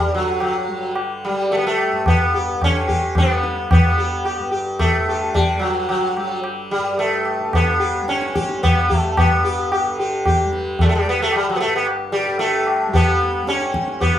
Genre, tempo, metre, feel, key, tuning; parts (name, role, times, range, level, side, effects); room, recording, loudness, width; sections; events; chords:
indian classical, Hindustani; 110 BPM; 5/4; straight; G raga yaman; A4 = 436 Hz
sitar; melody; 0.0-14.2 s; F#3 to G4; -19 LUFS; equal
tanpura; drone; 0.0-14.2 s; G2 to G3; -28 LUFS; right 1 dB
tabla; percussion; 0.4-14.2 s; -20 LUFS; left 1 dB
moderate studio reverb, RT60 0.6 s; small room reverb, faint mains hum; -16 LUFS; side -11 dB against mid
0.0-14.2 A section